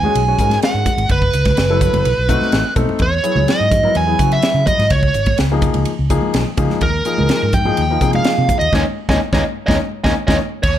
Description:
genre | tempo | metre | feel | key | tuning
electric jazz fusion | 126 BPM | 4/4 | straight | unclear | A4 = 440 Hz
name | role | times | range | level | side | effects
smooth overdriven lead guitar | melody | 0.0-10.8 s | Bb4 to Ab5 | -18 LUFS | right 3 dB | slapback echo
clear baby grand piano | accompaniment | 0.0-10.4 s | F3 to C#5 | -21 LUFS | left 6 dB | none
fretless electric bass | bass | 0.0-10.8 s | Gb1 to C#3 | -19 LUFS | equal | none
congas | percussion | 0.0-10.4 s | none | -24 LUFS | right 2 dB | none
crisp fusion drum kit | drums | 0.2-10.8 s | crash cymbal, hi-hat, kick drum, ride cymbal, snare drum | -20 LUFS | equal | none
room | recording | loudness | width
light reverb | dark, warm production | -13 LUFS | side -11 dB against mid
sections
0.0-10.6 A section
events
band accent 8.7-10.6; drum fill 10.4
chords
0.0 Bmaj7sus2; 1.1 Gbm7; 2.1 B7b9; 3.0 E69; 4.9 Dbadd9; 6.8 Eb9sus4

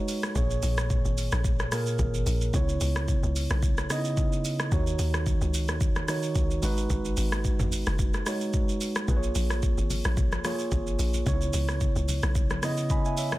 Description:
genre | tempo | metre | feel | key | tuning
amapiano | 110 BPM | 4/4 | swing 55% on 16ths | Bb phrygian | A4 = 440 Hz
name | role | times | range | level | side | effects
mellow tine electric piano | accompaniment | 0.0-13.4 s | Bb2 to Cb6 | -30 LUFS | right 1 dB | none
deep house drum kit | drums | 0.1-13.4 s | hi-hat, kick drum, rim click, shaker, toms | -28 LUFS | equal | soft clipping on snare
hollow log drum bass | bass | 0.4-12.6 s | Gb1 to Eb2 | -28 LUFS | equal | none
congas | percussion | 9.1-13.4 s | none | -38 LUFS | left 4 dB | none
room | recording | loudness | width
little or no reverb | dense, heavily limited modern master | -24 LUFS | side -17 dB against mid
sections
0.0-13.4 A section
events
none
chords
0.4 Bbm7; 2.5 Dbm7; 4.7 Ebm7; 6.6 Abm7; 9.1 Bbm7; 11.3 Dbm7

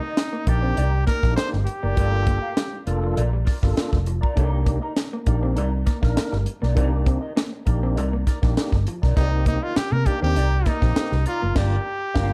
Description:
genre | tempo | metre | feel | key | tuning
funk | 100 BPM | 4/4 | straight | C dorian | A4 = 440 Hz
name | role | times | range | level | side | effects
bright trumpet | melody | 0.0-2.8, 9.2-12.3 s | Eb4 to C5 | -29 LUFS | equal | plate reverb
clean electric guitar | accompaniment | 0.0-12.3 s | Eb4 to F5 | -36 LUFS | equal | wah, spring reverb
electric guitar through a small old amp | riff | 0.0-11.5 s | F3 to C4 | -36 LUFS | equal | none
tight funk drum kit | drums | 0.2-12.3 s | crash cymbal, hi-hat, kick drum, snare drum | -25 LUFS | equal | none
tonewheel organ | stabs | 0.5-12.3 s | Bb3 to Bb4 | -33 LUFS | equal | overdrive, fast rotary speaker
vintage muted fingered electric bass | bass | 0.5-12.3 s | F1 to C3 | -24 LUFS | equal | none
room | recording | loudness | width
light reverb | dark, warm production | -22 LUFS | mono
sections
0.0-12.3 A section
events
band accent 11.6-12.3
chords
0.0 Cm9; 2.0 Gm7; 4.4 Cm9; 11.6 Gm7

